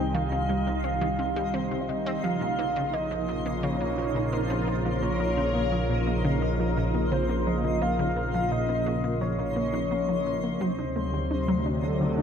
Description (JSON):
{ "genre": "ambient, sequencer-driven space music", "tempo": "86 BPM", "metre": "4/4", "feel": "straight", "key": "unclear", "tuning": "A4 = 445 Hz", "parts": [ { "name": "soft octave-layered synth lead", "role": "melody", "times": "0.0-12.2 s", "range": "C5 to G5", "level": "-30 LUFS", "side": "left 1 dB", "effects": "chorus, ping-pong delay" }, { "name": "sweeping resonant pad", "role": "sustained chords", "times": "0.0-12.2 s", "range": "C3 to Eb5", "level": "-30 LUFS", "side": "equal", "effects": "chorus" }, { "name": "analog pluck", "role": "riff", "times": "0.0-12.2 s", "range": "Bb2 to D4", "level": "-32 LUFS", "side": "equal", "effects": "chorus, ping-pong delay" }, { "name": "fat analog bass", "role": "bass", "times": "0.0-12.2 s", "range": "Bb1 to D2", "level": "-32 LUFS", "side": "equal", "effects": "none" }, { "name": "twinkling granular texture", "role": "texture", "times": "0.0-12.2 s", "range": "Eb4 to C6", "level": "-36 LUFS", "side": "right 4 dB", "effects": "built-in reverb, lush chorus" } ], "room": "wet lush hall reverb, RT60 2.7 s", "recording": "dreamy mix soaked in reverb", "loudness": "-24 LUFS", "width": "side -7 dB against mid", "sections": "0.0-12.2 A section", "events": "none", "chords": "0.0 Cm; 2.2 Bbm; 10.6 D7" }